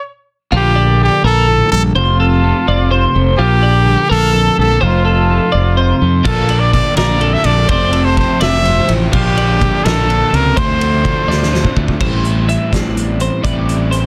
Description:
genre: math rock and midwest emo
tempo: 84 BPM (dotted quarters)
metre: 6/8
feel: straight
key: unclear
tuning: A4 = 443 Hz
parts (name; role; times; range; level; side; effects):
- bright trumpet; melody; 0.0-11.8 s; F4 to E5; -18 LUFS; equal; slapback echo
- twelve-string electric guitar; accompaniment; 0.5-14.1 s; D2 to F4; -22 LUFS; equal; none
- twelve-string electric guitar; arpeggios; 0.5-14.1 s; F4 to E5; -23 LUFS; equal; lush chorus, slapback echo
- fuzz fingered electric bass; bass; 0.5-14.1 s; F1 to F2; -17 LUFS; equal; overdrive
- crunchy overdriven guitar; riff; 6.2-14.1 s; F2 to E4; -24 LUFS; equal; none
- loose indie drum kit; drums; 6.3-14.0 s; crash cymbal, hi-hat, kick drum, ride cymbal, snare drum; -21 LUFS; equal; none
room: little or no reverb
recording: dense, heavily limited modern master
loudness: -13 LUFS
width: mono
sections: 0.5-12.0 A section; 12.0-14.1 B section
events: stop 0.0-0.5; drum fill 11.3-12.0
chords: 0.0 N.C.; 0.5 Bbmaj7; 2.0 F; 3.4 Bbmaj7; 4.8 F7; 6.3 Bbmaj7; 7.7 Fmaj7; 9.1 Bbmaj7; 10.6 Dm7; 12.0 Am7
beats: | 0.52 1.24 | 1.96 2.68 | 3.40 4.11 | 4.83 5.55 | 6.27 6.98 | 7.70 8.42 | 9.13 9.85 | 10.57 11.29 | 12.01 12.72 | 13.44

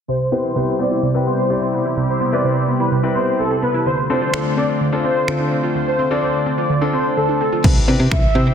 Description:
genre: dance-pop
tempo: 127 BPM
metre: 4/4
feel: straight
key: C major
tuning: A4 = 436 Hz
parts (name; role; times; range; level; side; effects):
- filtered supersaw swell; melody; 0.1-7.5 s; A4 to D5; -20 LUFS; equal; sidechain pumping, low-pass filter, digital delay
- sweeping resonant pad; sustained chords; 0.3-7.6 s; C3 to C5; -23 LUFS; equal; chorus, sidechain pumping, low-pass filter
- glassy wavetable pluck; arpeggios; 0.1-7.6 s; C3 to F4; -22 LUFS; right 2 dB; chorus, sidechain pumping, low-pass filter
- clear concert grand piano; accompaniment; 0.3-8.5 s; C4 to D5; -23 LUFS; left 4 dB; sidechain pumping, low-pass filter
- punchy analog drum machine; drums; 4.3-8.2 s; crash cymbal, finger snaps, kick drum; -18 LUFS; equal; soft clipping on snare
- direct-recorded clean electric guitar; riff; 7.6-8.5 s; C4 to E4; -29 LUFS; right 8 dB; ensemble chorus
- slap-like FM bass; bass; 7.6-8.5 s; C2 to C3; -17 LUFS; equal; sidechain pumping
- mellow horn-like synth lead; melody; 8.1-8.5 s; E5; -22 LUFS; right 4 dB; chorus
room: moderate lush hall reverb, RT60 1.8 s, digital ambience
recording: dense, heavily limited modern master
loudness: -15 LUFS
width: side -8 dB against mid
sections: 0.1-7.6 A section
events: filter sweep 0.1-7.6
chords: 0.1 Cmaj7; 3.9 Dm7; 7.6 Cmaj7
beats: | 0.08 0.56 1.03 1.50 | 1.97 2.45 2.92 3.39 | 3.86 4.34 4.81 5.28 | 5.75 6.22 6.70 7.17 | 7.64 8.12

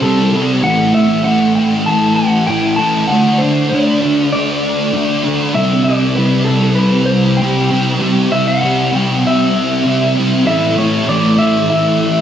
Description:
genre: rock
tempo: 98 BPM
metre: 4/4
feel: straight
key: C lydian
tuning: A4 = 439 Hz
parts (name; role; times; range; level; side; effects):
- electric guitar through a small old amp; melody; 0.0-12.2 s; A4 to A5; -18 LUFS; left 2 dB; tape echo
- thick fuzz guitar; riff; 0.0-12.2 s; A2 to D4; -12 LUFS; equal; distortion, ensemble chorus
room: wet lush hall reverb, RT60 2.4 s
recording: dreamy mix soaked in reverb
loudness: -11 LUFS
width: side -9 dB against mid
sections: 0.0-12.2 A section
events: none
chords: 0.0 C5; 0.6 A5; 3.1 D5; 5.6 C; 10.5 A5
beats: 0.02 | 0.63 1.25 1.86 2.48 | 3.09 3.71 4.32 4.94 | 5.55 6.17 6.78 7.40 | 8.01 8.62 9.24 9.85 | 10.47 11.08 11.69

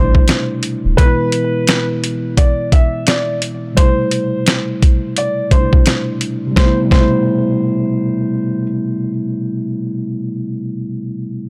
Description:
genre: hip hop, boom-bap hip-hop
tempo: 86 BPM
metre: 4/4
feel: swing 61% on 16ths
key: A minor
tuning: A4 = 437 Hz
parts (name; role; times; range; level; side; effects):
- warm upright piano; melody; 0.0-8.6 s; B4 to E5; -23 LUFS; equal; high-pass filter, low-pass filter, delay
- mellow tine electric piano; accompaniment; 0.0-11.5 s; B2 to E4; -20 LUFS; equal; high-pass filter, low-pass filter
- soft dub sub bass; bass; 0.0-1.0 s; D1 to A1; -17 LUFS; equal; none
- dusty soul sampler-style drum kit; drums; 0.1-7.1 s; hi-hat, kick drum, snare drum; -14 LUFS; equal; none
room: little or no reverb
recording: none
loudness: -16 LUFS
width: mono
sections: 0.0-6.6 A section; 6.6-9.4 B section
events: none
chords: 0.0 Am7; 1.0 E; 3.8 Am7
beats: 0.28 | 0.98 1.68 2.38 3.08 | 3.77 4.47 5.17 5.87 | 6.56 7.26 7.96 8.66

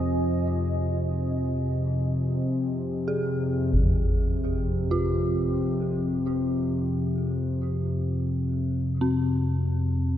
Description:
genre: dark ambient drone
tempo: free time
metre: none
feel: none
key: F minor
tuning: A4 = 442 Hz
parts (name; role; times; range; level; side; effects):
- deep dark ambient pad; sustained chords; 0.0-3.8 s; F4 to Ab5; -35 LUFS; right 1 dB; chorus, built-in reverb
- dark detuned synth bell; arpeggios; 0.0-10.2 s; C4 to Ab4; -33 LUFS; right 1 dB; chorus, tape echo
- analog drone; drone; 0.0-10.2 s; F2 to C3; -25 LUFS; left 1 dB; chorus
- concert bass drum; percussion; 3.7-3.9 s; none; -26 LUFS; equal; low-pass filter on kick
room: wet cathedral reverb, RT60 5.4 s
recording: in a vast, echoing space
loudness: -24 LUFS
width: side -11 dB against mid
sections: 0.0-3.8 A section; 3.8-10.2 B section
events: none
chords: 0.0 Fm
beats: free time

